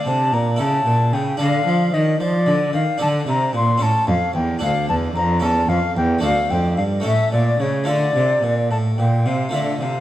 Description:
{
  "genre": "classical, baroque-style sonata movement with continuo",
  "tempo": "74 BPM (dotted quarters)",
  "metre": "6/8",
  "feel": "straight",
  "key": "D minor from 3.0 s",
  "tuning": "A4 = 441 Hz",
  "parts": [
    { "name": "mellow silver concert flute", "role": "melody", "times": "0.0-10.0 s", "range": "C#5 to C6", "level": "-21 LUFS", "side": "left 2 dB", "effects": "none" },
    { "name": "harpsichord", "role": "accompaniment", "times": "0.0-10.0 s", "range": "D2 to D5", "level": "-24 LUFS", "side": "equal", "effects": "none" },
    { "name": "rich cello", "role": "bass", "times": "0.1-10.0 s", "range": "D2 to F3", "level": "-20 LUFS", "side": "right 1 dB", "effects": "none" }
  ],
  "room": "moderate recital hall reverb, RT60 1.5 s",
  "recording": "none",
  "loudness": "-16 LUFS",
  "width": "side -13 dB against mid",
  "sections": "0.0-9.5 A section",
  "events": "none",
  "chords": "0.0 D5; 0.6 A; 1.4 Dm; 3.0 D5; 3.8 A; 4.6 Dm; 5.4 A/E; 6.2 Dm; 7.0 A; 7.9 Dm",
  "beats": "0.60 | 1.40 2.21 | 3.01 3.81 | 4.62 5.42 | 6.23 7.04 | 7.87 8.70 | 9.53"
}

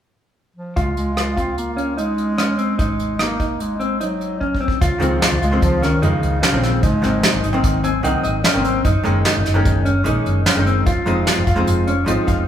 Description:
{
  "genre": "progressive instrumental, band music in an uneven meter",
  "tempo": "149 BPM",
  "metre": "5/4",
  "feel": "straight",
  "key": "Db major",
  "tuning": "A4 = 443 Hz",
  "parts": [
    { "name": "warm bass clarinet", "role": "melody", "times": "0.6-7.6 s", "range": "Db3 to C4", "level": "-23 LUFS", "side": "equal", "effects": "ping-pong delay" },
    { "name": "mellow electric guitar", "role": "arpeggios", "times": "0.8-12.4 s", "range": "C4 to F4", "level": "-22 LUFS", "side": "left 1 dB", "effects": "ping-pong delay" },
    { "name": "hollow-body short-scale fingered electric bass", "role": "bass", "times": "0.8-12.5 s", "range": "F1 to F2", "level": "-22 LUFS", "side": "equal", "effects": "none" },
    { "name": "soft brush drum kit", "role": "drums", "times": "0.8-12.4 s", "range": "hi-hat, kick drum, rim click, snare drum", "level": "-21 LUFS", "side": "equal", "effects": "none" },
    { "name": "hollow-body jazz guitar", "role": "accompaniment", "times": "5.0-12.5 s", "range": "Eb3 to Ab5", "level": "-21 LUFS", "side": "left 1 dB", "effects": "none" }
  ],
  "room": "wet large studio reverb, RT60 1.2 s",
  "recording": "band playing live in one room",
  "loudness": "-16 LUFS",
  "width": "side -10 dB against mid",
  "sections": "0.8-4.8 A section; 4.8-12.5 B section",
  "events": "drum fill 4.4-4.8; hollow-body jazz guitar fill 7.6-8.8, 12.1-12.5",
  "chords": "0.0 N.C.; 0.8 Db; 2.8 Ab7; 4.8 Dbmaj7; 6.8 Ab7; 8.8 Gb6; 10.9 Fm7",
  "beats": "0.36 | 0.77 1.17 1.58 1.98 2.39 | 2.79 3.20 3.60 4.01 4.41 | 4.82 5.22 5.62 6.03 6.43 | 6.83 7.24 7.64 8.04 8.45 | 8.85 9.25 9.66 10.06 10.46 | 10.87 11.27 11.68 12.08"
}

